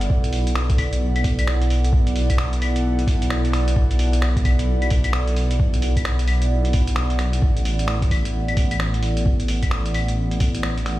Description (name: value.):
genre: future garage.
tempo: 131 BPM.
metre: 4/4.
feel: swing 62% on 16ths.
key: B minor.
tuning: A4 = 440 Hz.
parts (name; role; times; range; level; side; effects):
dark analog pad; sustained chords; 0.0-11.0 s; B3 to F#5; -27 LUFS; right 1 dB; chorus, phaser, sidechain pumping.
dark detuned saw bass; bass; 0.0-11.0 s; A1 to B1; -21 LUFS; equal; sidechain pumping.
lo-fi sampler-style drum kit; drums; 0.0-11.0 s; claves, finger snaps, hi-hat; -28 LUFS; left 1 dB; none.
electronic kick drum; drums; 0.1-10.5 s; none; -20 LUFS; equal; overdrive.
room: light reverb, digital ambience.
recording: played on a big sound system in a bare room, large studio reverb, vinyl crackle.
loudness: -18 LUFS.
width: side -16 dB against mid.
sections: 0.0-11.0 A section.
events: none.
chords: 0.1 Bm7; 7.4 Asus24.